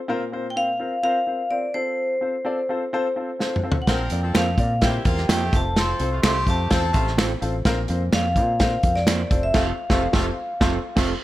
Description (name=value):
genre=uptempo 1960s-style soul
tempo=127 BPM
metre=4/4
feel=straight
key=F major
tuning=A4 = 440 Hz
part: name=dark concert grand piano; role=accompaniment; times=0.1-11.1 s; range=Bb2 to D5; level=-28 LUFS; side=left 2 dB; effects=none
part: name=vibraphone with hard mallets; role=melody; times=0.5-10.9 s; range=C5 to C6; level=-25 LUFS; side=left 1 dB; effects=none
part: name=warm soul drum kit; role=drums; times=3.4-11.1 s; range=crash cymbal, hi-hat, kick drum, snare drum, toms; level=-22 LUFS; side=equal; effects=none
part: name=clear horn section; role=second line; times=3.9-11.1 s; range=C3 to Bb4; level=-30 LUFS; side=equal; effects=slapback echo
part: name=fingered electric bass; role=bass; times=3.9-11.1 s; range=F1 to Bb2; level=-25 LUFS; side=equal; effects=none
part: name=mellow electric guitar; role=stabs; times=4.3-11.1 s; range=Bb3 to C5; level=-29 LUFS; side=right 7 dB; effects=spring reverb
part: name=finger snaps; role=percussion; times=4.3-9.2 s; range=none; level=-32 LUFS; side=left 3 dB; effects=none
room=little or no reverb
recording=none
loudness=-19 LUFS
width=side -15 dB against mid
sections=0.0-11.2 A section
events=drum fill 3.4-3.9; band accent 9.5-11.2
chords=0.1 Bbsus2; 1.7 F; 3.9 Bbsus2; 5.5 F; 7.7 Bbsus2; 9.3 F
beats=| 0.09 0.56 1.04 1.51 | 1.99 2.46 2.93 3.40 | 3.88 4.35 4.82 5.29 | 5.76 6.24 6.71 7.18 | 7.65 8.12 8.60 9.07 | 9.54 10.02 10.49 10.97